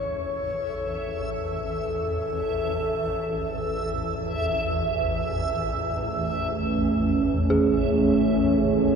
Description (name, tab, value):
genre	dark ambient drone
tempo	48 BPM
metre	4/4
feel	straight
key	A major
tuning	A4 = 440 Hz
part	breathy long shakuhachi	melody	0.0-5.0 s	A4 to C#5	-30 LUFS	left 3 dB	shimmer reverb, ping-pong delay
part	dark detuned synth bell	arpeggios	0.0-9.0 s	C#4 to G#4	-28 LUFS	right 2 dB	chorus, shimmer reverb
part	swarming drone	drone	0.0-9.0 s	A1 to E2	-29 LUFS	equal	built-in reverb
part	backwards swelling texture	texture	0.7-9.0 s	E5	-31 LUFS	right 2 dB	built-in reverb, shimmer reverb
part	dark analog pad	sustained chords	6.2-9.0 s	A3 to G#4	-22 LUFS	right 2 dB	chorus, shimmer reverb
room	wet cathedral reverb, RT60 6.7 s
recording	in a vast, echoing space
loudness	-23 LUFS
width	side -6 dB against mid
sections	0.0-9.0 A section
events	fade-in on synth drone 0.0-9.0; fade-in on synth texture 0.0-9.0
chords	0.0 A